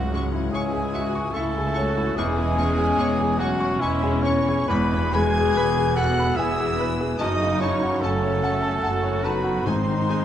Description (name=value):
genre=classical, romantic movement for piano and orchestra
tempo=73 BPM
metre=3/4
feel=rubato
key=unclear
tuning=A4 = 441 Hz
part: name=clear grand piano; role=melody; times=0.0-10.2 s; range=C#2 to C#6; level=-26 LUFS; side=left 2 dB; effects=none
part: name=mellow clarinet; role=second line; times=0.0-10.2 s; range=G#3 to B4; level=-32 LUFS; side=left 1 dB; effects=none
part: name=mellow cor anglais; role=second line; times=0.0-10.2 s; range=E4 to G#5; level=-27 LUFS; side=right 2 dB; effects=none
part: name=warm symphonic violin section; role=second line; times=0.0-10.2 s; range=E5 to G#6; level=-35 LUFS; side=left 1 dB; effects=none
part: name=warm symphonic viola section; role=accompaniment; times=0.0-10.2 s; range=G#3 to F#4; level=-30 LUFS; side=left 1 dB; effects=none
part: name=clear French horn section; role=sustained chords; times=0.0-10.2 s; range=E3 to G#4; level=-29 LUFS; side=left 3 dB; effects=none
part: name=dark chamber double bass section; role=bass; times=0.0-10.2 s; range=E1 to C#2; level=-29 LUFS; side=right 2 dB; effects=none
part: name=warm symphonic cello section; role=bass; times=0.0-10.2 s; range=C#2 to G#2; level=-30 LUFS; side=right 2 dB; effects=none
part: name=timpani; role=percussion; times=0.0-0.9, 9.7-10.2 s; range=G#2 to C#3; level=-32 LUFS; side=left 2 dB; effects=none
part: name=warm symphonic violin section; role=melody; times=0.1-10.2 s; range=G#5 to C#6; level=-36 LUFS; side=left 3 dB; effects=none
room=moderate recital hall reverb, RT60 1.3 s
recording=dark, warm production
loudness=-20 LUFS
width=side -10 dB against mid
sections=0.0-10.2 A section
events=none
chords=0.0 C#m; 2.2 C#m/E; 4.7 E; 7.2 F#m; 9.7 G#